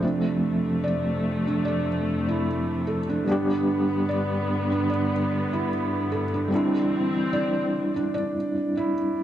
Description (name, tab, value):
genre	trip hop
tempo	74 BPM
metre	4/4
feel	swing 56% on 16ths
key	unclear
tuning	A4 = 440 Hz
part	overdriven tine electric piano	accompaniment	0.0-9.2 s	F3 to G4	-26 LUFS	equal	fast tremolo, tape echo
part	muted studio string section	sustained chords	0.0-8.1 s	F2 to C4	-28 LUFS	left 1 dB	none
part	felt-muted upright piano	arpeggios	0.0-9.2 s	D4 to D5	-28 LUFS	right 2 dB	low-pass filter, ping-pong delay
room	light reverb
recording	none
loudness	-22 LUFS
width	side -11 dB against mid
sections	0.0-9.2 A section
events	none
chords	0.0 F; 3.3 G; 6.5 Cadd9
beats	| 0.03 0.84 1.65 2.46 | 3.27 4.08 4.89 5.70 | 6.51 7.32 8.13 8.95